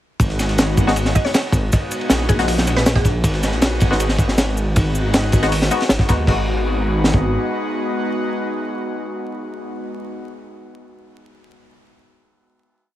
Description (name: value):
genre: drum and bass, jungle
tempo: 158 BPM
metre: 4/4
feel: straight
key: G# minor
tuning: A4 = 440 Hz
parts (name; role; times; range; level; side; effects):
- airy breathy pad; sustained chords; 0.2-10.1 s; G#3 to F#4; -25 LUFS; equal; chorus, vintage 12-bit sampler grit
- dark detuned saw bass; bass; 0.2-7.4 s; G#1 to D#2; -20 LUFS; equal; none
- breakbeat sampler-style drum kit; drums; 0.2-6.2 s; hi-hat, shaker, snare drum; -29 LUFS; left 1 dB; overdrive, high-pass filter on perc, high-pass filter on snare, high-pass filter on hats, high-pass filter on room
- crunchy breakbeat drum kit; drums; 0.2-7.2 s; crash cymbal, kick drum, ride cymbal, snare drum; -18 LUFS; equal; none
- filtered dub chord stab; stabs; 0.9-10.8 s; G#3 to F#4; -24 LUFS; left 3 dB; chorus, dub echo
- mallet-like synth pluck; melody; 1.2-3.3 s; G#4 to D#5; -27 LUFS; right 1 dB; chorus, dub echo
room: little or no reverb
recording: vinyl crackle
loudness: -16 LUFS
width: side -13 dB against mid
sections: 0.2-6.3 drop; 6.3-9.3 final chord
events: drop 0.2-6.3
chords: 0.2 G#m7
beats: | 0.20 0.58 0.96 1.34 | 1.72 2.10 2.48 2.86 | 3.24 3.62 4.00 4.38 | 4.76 5.14 5.52 5.90 | 6.28 6.66 7.04 7.42 | 7.80 8.18 8.56 8.94